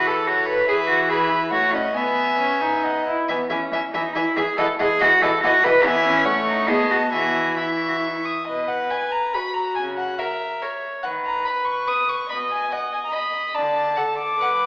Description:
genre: quick classical-period movement for string quartet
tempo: 132-149 BPM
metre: 3/4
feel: rubato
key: E major, B major from 8.5 s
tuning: A4 = 440 Hz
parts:
  - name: warm violin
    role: melody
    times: 0.0-14.7 s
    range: B4 to D#6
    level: -25 LUFS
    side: left 1 dB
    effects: none
  - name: rich violin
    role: second line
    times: 0.0-14.5 s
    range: A4 to F#5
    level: -25 LUFS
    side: equal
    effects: none
  - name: warm viola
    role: accompaniment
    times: 0.0-14.7 s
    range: E3 to D#5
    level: -25 LUFS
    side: equal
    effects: none
  - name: rich cello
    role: bass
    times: 0.0-13.9 s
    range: B2 to B4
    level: -21 LUFS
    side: equal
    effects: none
room: wet recital hall reverb, RT60 1.4 s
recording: recorded in a church or concert hall, AM radio sound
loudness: -18 LUFS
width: side -23 dB against mid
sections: 0.0-8.5 A section; 8.5-14.7 B section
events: none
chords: 0.0 B5/E; 0.7 E; 1.5 F#m/A; 1.9 E/B; 2.8 B; 3.3 E; 4.6 B7/E; 5.8 E; 6.3 F#m/A; 6.7 B7; 7.1 E; 8.5 B5; 9.8 F#7/C#; 11.0 B/D#; 12.3 B; 13.5 D5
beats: 0.27 | 0.68 1.09 1.51 | 1.95 2.39 2.84 | 3.29 3.73 4.16 | 4.59 5.01 5.44 | 5.85 6.26 6.69 | 7.13 7.58 8.03 | 8.48 8.91 9.34 | 9.77 10.20 10.62 | 11.04 11.46 11.88 | 12.30 12.72 13.13 | 13.55 13.97 14.40

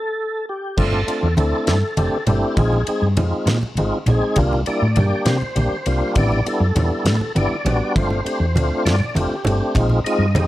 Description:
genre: electric jazz fusion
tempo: 67 BPM (dotted quarters)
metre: 6/8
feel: straight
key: unclear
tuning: A4 = 439 Hz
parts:
  - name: tonewheel organ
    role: accompaniment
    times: 0.0-10.5 s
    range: G3 to Eb5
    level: -21 LUFS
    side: equal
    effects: slow rotary speaker, overdrive, chorus vibrato, plate reverb
  - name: woody fretless electric bass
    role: bass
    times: 0.8-10.5 s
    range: F1 to C3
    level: -19 LUFS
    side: equal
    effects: wide subtle chorus
  - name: damped 70s drum kit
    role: drums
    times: 0.8-10.5 s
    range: crash cymbal, kick drum, ride cymbal, snare drum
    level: -26 LUFS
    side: equal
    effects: none
  - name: congas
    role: percussion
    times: 0.8-10.5 s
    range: none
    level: -23 LUFS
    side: right 1 dB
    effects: none
room: light reverb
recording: none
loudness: -17 LUFS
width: side -15 dB against mid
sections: 0.8-10.5 A section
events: drum fill 0.0-0.8; band accent 0.0-0.8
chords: 0.0 N.C.; 0.8 G9sus4; 2.6 Bb9sus4; 4.4 C9sus4; 6.2 A9sus4; 8.0 G9sus4; 9.8 Bb9sus4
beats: | 0.79 1.68 | 2.58 3.48 | 4.37 5.27 | 6.17 7.07 | 7.96 8.86 | 9.76

